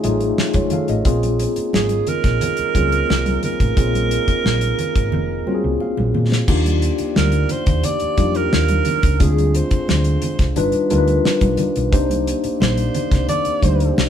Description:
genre	lush 1970s-style soul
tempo	88 BPM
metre	4/4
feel	straight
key	Bb minor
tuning	A4 = 440 Hz
part	mellow tine electric piano	accompaniment	0.0-14.1 s	G3 to F5	-21 LUFS	left 3 dB	medium stereo tremolo
part	dark French horn section	sustained chords	0.0-14.1 s	C3 to D5	-31 LUFS	left 2 dB	none
part	hollow-body short-scale fingered electric bass	bass	0.0-14.1 s	F1 to Bb2	-20 LUFS	right 1 dB	none
part	damped 70s drum kit	drums	0.0-14.1 s	crash cymbal, hi-hat, kick drum, snare drum	-20 LUFS	equal	none
part	congas	percussion	0.0-14.1 s	none	-27 LUFS	right 1 dB	none
part	breathy alto saxophone	melody	1.7-13.9 s	Ab4 to D5	-22 LUFS	right 6 dB	none
room	moderate studio reverb, RT60 0.7 s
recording	band playing live in one room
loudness	-16 LUFS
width	side -9 dB against mid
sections	0.0-6.5 A section; 6.5-14.1 A section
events	drum fill 5.1-6.5; tine electric piano fill 5.5-6.5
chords	0.0 F7alt; 1.1 Bbm9; 6.5 Ebmaj9; 9.2 Dm7b5; 10.6 G7b13; 11.9 Cm9

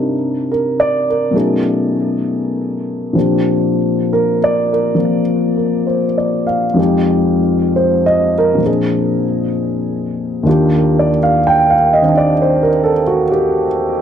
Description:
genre	jazz ballad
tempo	66 BPM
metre	4/4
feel	swing 68% on 8ths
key	unclear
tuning	A4 = 440 Hz
part	dark baby grand piano	solo	0.0-14.0 s	Eb2 to G5	-12 LUFS	equal	tape echo
room	wet studio reverb, RT60 0.6 s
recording	dark, warm production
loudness	-12 LUFS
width	side -9 dB against mid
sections	0.0-14.0 A section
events	none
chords	0.0 Cm9; 1.3 B13; 3.2 Bb6; 6.8 Fm7; 8.6 Bb9; 10.5 Ebmaj7

